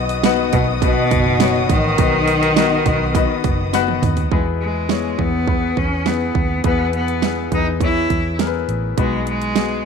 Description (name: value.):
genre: piano-driven pop.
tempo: 103 BPM.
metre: 4/4.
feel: straight.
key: E major.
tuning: A4 = 441 Hz.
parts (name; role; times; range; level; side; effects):
dark studio violin section; second line; 0.0-4.3 s; D#5 to D#6; -26 LUFS; equal; none.
clear baby grand piano; accompaniment; 0.0-9.9 s; B2 to B5; -22 LUFS; left 14 dB; none.
muted studio string section; sustained chords; 0.0-4.3 s; D#3 to F#4; -28 LUFS; left 2 dB; none.
vintage muted fingered electric bass; bass; 0.0-9.8 s; F#1 to E2; -24 LUFS; right 1 dB; none.
pop drum kit; drums; 0.1-9.7 s; hi-hat, kick drum, snare drum, toms; -20 LUFS; right 5 dB; none.
bright cello; melody; 0.5-9.9 s; B2 to E4; -20 LUFS; equal; slapback echo.
room: light reverb, small room reverb.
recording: 1960s-style stereo.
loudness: -15 LUFS.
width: side -6 dB against mid.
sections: 0.0-4.3 A section; 4.3-9.9 B section.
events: grand piano fill 3.4-4.3; drum fill 3.7-4.3.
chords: 0.0 B; 4.3 E; 9.0 B.